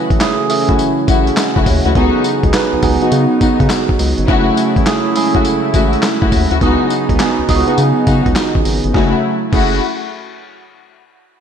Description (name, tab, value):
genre	R&B, new jack swing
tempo	103 BPM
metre	4/4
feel	swing 65% on 16ths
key	F# dorian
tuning	A4 = 440 Hz
part	bell-like tine electric piano	accompaniment	0.0-9.8 s	G#3 to D#5	-17 LUFS	right 5 dB	phaser
part	warm analog pad	sustained chords	0.0-9.2 s	C#3 to E4	-20 LUFS	equal	chorus
part	round analog bass	bass	0.1-9.8 s	F#1 to C#3	-17 LUFS	left 1 dB	none
part	dusty soul sampler-style drum kit	drums	0.1-9.7 s	crash cymbal, handclaps, hi-hat, kick drum, snare drum, tambourine	-17 LUFS	left 1 dB	none
part	dark studio string section	stabs	0.7-9.8 s	A3 to F#4	-19 LUFS	left 4 dB	ping-pong delay, slapback echo
room	moderate lush hall reverb, RT60 1.9 s, digital ambience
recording	big arena sound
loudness	-11 LUFS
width	side -8 dB against mid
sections	0.0-8.9 A section; 8.9-11.3 B section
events	none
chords	0.0 F#m7; 2.0 C#9sus4; 4.3 F#m7; 6.6 C#9sus4; 8.9 F#m7